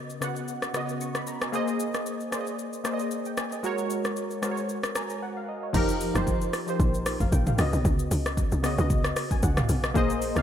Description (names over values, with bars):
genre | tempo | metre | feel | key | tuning
amapiano | 114 BPM | 4/4 | swing 55% on 16ths | unclear | A4 = 440 Hz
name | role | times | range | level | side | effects
warm analog keys | accompaniment | 0.0-10.4 s | Db3 to Db6 | -29 LUFS | equal | chorus
deep house drum kit | drums | 0.1-10.4 s | crash cymbal, hi-hat, kick drum, rim click, shaker, toms | -29 LUFS | equal | none
tight log drum bass | bass | 5.7-10.4 s | F1 to Db2 | -27 LUFS | equal | none
room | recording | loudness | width
moderate lush hall reverb, RT60 1.9 s | dreamy mix soaked in reverb | -25 LUFS | side -10 dB against mid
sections
0.0-5.7 A section; 5.7-10.4 B section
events
synth keys fill 4.7-5.7; break 5.2-5.7; drop 5.7-10.4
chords
0.0 Db9sus4; 1.5 Bb9sus4; 3.6 Ab9sus4; 5.7 F9sus4; 7.6 Db9sus4